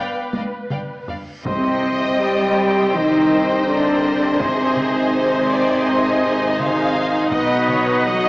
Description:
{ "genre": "cinematic, epic orchestral film score", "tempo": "82 BPM", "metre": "4/4", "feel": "straight", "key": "C minor", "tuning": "A4 = 440 Hz", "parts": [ { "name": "warm symphonic violin section", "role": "melody", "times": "0.0-8.3 s", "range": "Ab4 to G5", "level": "-25 LUFS", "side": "left 1 dB", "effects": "none" }, { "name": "rich symphonic violin section", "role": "second line", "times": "0.0-8.3 s", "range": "D5 to Ab5", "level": "-27 LUFS", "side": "left 1 dB", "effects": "none" }, { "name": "rich symphonic viola section", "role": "accompaniment", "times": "0.0-8.3 s", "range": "Eb4 to D#5", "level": "-24 LUFS", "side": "equal", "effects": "none" }, { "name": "dark French horn section", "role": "sustained chords", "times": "0.0-8.3 s", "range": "B3 to G4", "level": "-21 LUFS", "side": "equal", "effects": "none" }, { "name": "warm symphonic cello section", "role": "bass", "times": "0.0-8.3 s", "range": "G2 to G3", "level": "-25 LUFS", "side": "equal", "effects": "none" }, { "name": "warm symphonic double bass section", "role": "bass", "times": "0.0-8.3 s", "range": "G1 to C2", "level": "-34 LUFS", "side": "right 1 dB", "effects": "none" }, { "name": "reverse cymbal and sub drop", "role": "sound effects", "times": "0.9-4.4 s", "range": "none", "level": "-42 LUFS", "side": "equal", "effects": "none" }, { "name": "taiko ensemble", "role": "drums", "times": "0.3-8.0 s", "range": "none", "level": "-29 LUFS", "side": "equal", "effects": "none" }, { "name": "rich studio string section", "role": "sustained chords", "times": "1.4-8.3 s", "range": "C4 to D#5", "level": "-26 LUFS", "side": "equal", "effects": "none" }, { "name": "timpani", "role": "percussion", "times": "1.4-2.5 s", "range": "C3", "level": "-32 LUFS", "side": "equal", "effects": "none" }, { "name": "silver concert flute", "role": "second line", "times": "1.5-8.3 s", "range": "B4 to G5", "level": "-25 LUFS", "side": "equal", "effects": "none" }, { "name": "mellow tuba", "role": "bass", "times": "1.5-8.3 s", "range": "Ab1 to C2", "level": "-27 LUFS", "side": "right 1 dB", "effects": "none" } ], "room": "wet concert hall reverb, RT60 2.0 s", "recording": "small speaker sound", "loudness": "-15 LUFS", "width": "side -22 dB against mid", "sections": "0.0-1.5 A section; 1.5-8.3 B section", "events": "drum fill 0.3-1.5; reverse cymbal 0.9-1.5; impact 1.5-4.4", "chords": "0.0 G7; 1.5 Cm; 4.4 Ab; 7.3 B" }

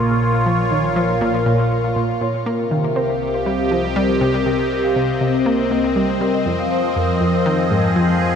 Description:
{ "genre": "ambient, sequencer-driven space music", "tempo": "120 BPM", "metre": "4/4", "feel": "straight", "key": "Bb dorian", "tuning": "A4 = 440 Hz", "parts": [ { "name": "phased analog pad", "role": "sustained chords", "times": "0.0-8.4 s", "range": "Bb2 to Eb5", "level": "-18 LUFS", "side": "left 1 dB", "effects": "phaser, chorus, shimmer reverb" }, { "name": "vibraphone with soft mallets", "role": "arpeggios", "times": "0.0-8.3 s", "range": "Bb4 to F5", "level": "-24 LUFS", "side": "moving between left 5 dB and right 1 dB", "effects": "auto-pan, low-pass filter, ping-pong delay, shimmer reverb" }, { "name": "analog pluck", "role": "riff", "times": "0.0-8.1 s", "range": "F2 to C4", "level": "-21 LUFS", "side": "equal", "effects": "chorus, ping-pong delay" }, { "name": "analog drone", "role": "bass", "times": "0.0-8.4 s", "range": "Bb1 to F2", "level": "-31 LUFS", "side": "equal", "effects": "chorus" } ], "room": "wet plate reverb, RT60 2.5 s", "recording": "dark, warm production", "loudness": "-16 LUFS", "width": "side -7 dB against mid", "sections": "0.0-8.4 A section", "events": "fade-in on synth drone 0.0-8.4; filter sweep on vibraphone 0.0-8.4", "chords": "0.0 Bbm; 2.5 Cm; 6.5 Fm7" }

